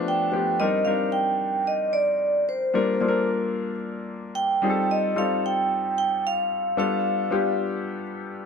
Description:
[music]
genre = disco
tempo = 112 BPM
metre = 4/4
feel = straight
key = C dorian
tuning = A4 = 439 Hz
[part]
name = vibraphone with medium hard mallets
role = melody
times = 0.0-7.6 s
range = C5 to G5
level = -23 LUFS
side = right 2 dB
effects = none
[part]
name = warm grand piano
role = accompaniment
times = 0.0-8.5 s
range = F3 to Bb4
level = -26 LUFS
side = left 3 dB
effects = none
[sound]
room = light reverb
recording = none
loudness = -22 LUFS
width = side -6 dB against mid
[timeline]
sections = 0.6-8.5 A section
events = none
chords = 0.0 G9; 0.6 Cm9; 2.7 Gm7; 4.6 F9; 6.8 G9

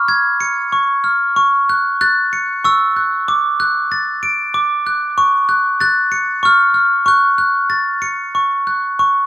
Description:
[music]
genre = children's music, lullaby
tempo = 94 BPM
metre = 3/4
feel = straight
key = F# minor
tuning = A4 = 440 Hz
[part]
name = glockenspiel with hard plastic mallets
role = solo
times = 0.0-9.3 s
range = C#6 to D7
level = -12 LUFS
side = equal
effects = none
[sound]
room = light reverb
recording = rough home demo mix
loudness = -12 LUFS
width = side -15 dB against mid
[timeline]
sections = 0.0-9.0 A section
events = none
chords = 0.0 C#; 1.4 F#m; 3.3 D; 5.2 F#m/C#; 6.4 C#; 7.1 F#m

